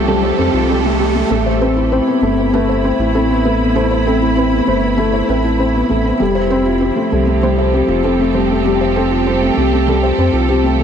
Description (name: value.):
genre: piano and strings electronica.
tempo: 98 BPM.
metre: 4/4.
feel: straight.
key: A minor.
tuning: A4 = 440 Hz.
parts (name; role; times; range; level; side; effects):
muted studio string section; sustained chords; 0.0-10.8 s; F3 to B5; -20 LUFS; right 4 dB; shimmer reverb.
felt-muted upright piano; riff; 0.0-10.8 s; G3 to C5; -15 LUFS; left 1 dB; tape echo, shimmer reverb.
round analog bass; bass; 0.0-10.8 s; F1 to F2; -19 LUFS; right 1 dB; none.
riser; sound effects; 0.0-1.3 s; none; -26 LUFS; right 3 dB; none.
soft round pluck; arpeggios; 0.1-10.8 s; G4 to C5; -23 LUFS; left 1 dB; chorus, tape echo, shimmer reverb.
room: moderate lush hall reverb, RT60 3.0 s.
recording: dark, warm production.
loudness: -12 LUFS.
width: side -8 dB against mid.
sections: 0.0-1.3 A section; 1.3-10.8 B section.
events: build-up 0.0-1.3; riser 0.0-1.3; drop 1.3-10.8.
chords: 0.0 Fadd9; 1.3 Amadd9; 6.2 Fadd9.